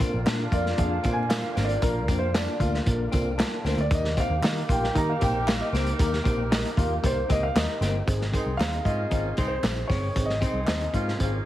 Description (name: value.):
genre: uptempo 1960s-style soul.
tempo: 115 BPM.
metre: 4/4.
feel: straight.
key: Ab major.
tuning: A4 = 440 Hz.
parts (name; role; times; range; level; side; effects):
warm concert grand piano; melody; 0.0-11.5 s; Bb4 to Bb5; -30 LUFS; right 1 dB; none.
mellow saxophone section; second line; 0.0-11.4 s; Ab3 to Bb4; -35 LUFS; right 2 dB; none.
mellow tine electric piano; accompaniment; 0.0-11.4 s; Bb3 to C5; -32 LUFS; left 2 dB; medium stereo tremolo.
tonewheel organ; sustained chords; 0.0-11.5 s; C3 to Ab4; -38 LUFS; right 1 dB; none.
electric guitar through a small old amp; riff; 0.0-11.1 s; C4 to F4; -36 LUFS; left 2 dB; none.
vintage muted picked electric bass; bass; 0.0-11.4 s; G1 to Eb3; -28 LUFS; equal; none.
crunchy breakbeat drum kit; drums; 0.0-11.3 s; hi-hat, kick drum, snare drum; -27 LUFS; equal; none.
tambourine and handclaps; percussion; 0.0-11.1 s; none; -41 LUFS; right 1 dB; none.
room: light reverb.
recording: heavily compressed radio sound, multiband compression, vinyl crackle.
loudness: -23 LUFS.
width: side -14 dB against mid.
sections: 0.0-8.1 A section; 8.1-11.5 B section.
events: grand piano solo 0.0-8.1.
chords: 0.0 Bb; 3.9 Eb; 8.1 Ab.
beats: 0.27 0.79 1.31 | 1.83 2.35 2.87 3.39 | 3.91 4.43 4.95 5.47 | 5.99 6.51 7.03 7.55 | 8.07 8.60 9.12 9.64 | 10.16 10.68 11.20.